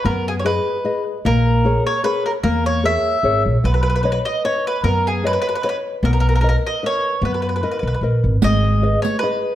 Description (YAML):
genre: italian folk, Italian serenade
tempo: 150 BPM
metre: 3/4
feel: swing 53% on 8ths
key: B major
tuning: A4 = 440 Hz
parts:
  - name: mandolin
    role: melody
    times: 0.0-9.6 s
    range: G#4 to E5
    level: -21 LUFS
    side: right 1 dB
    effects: none
  - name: upright bass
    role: bass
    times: 0.0-8.9 s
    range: G#1 to F#2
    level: -18 LUFS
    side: equal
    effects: none
  - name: nylon-string guitar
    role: accompaniment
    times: 0.1-9.6 s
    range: G#3 to D#5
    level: -22 LUFS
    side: left 4 dB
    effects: none
  - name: riq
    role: percussion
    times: 8.4-9.2 s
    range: none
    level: -24 LUFS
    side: right 4 dB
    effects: none
room: moderate recital hall reverb, RT60 1.4 s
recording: dark, warm production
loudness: -16 LUFS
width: side -12 dB against mid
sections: 0.0-9.6 A section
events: none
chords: 0.0 B6; 1.2 A#m7b5; 3.6 Badd9; 6.0 Bmaj7; 8.4 G#m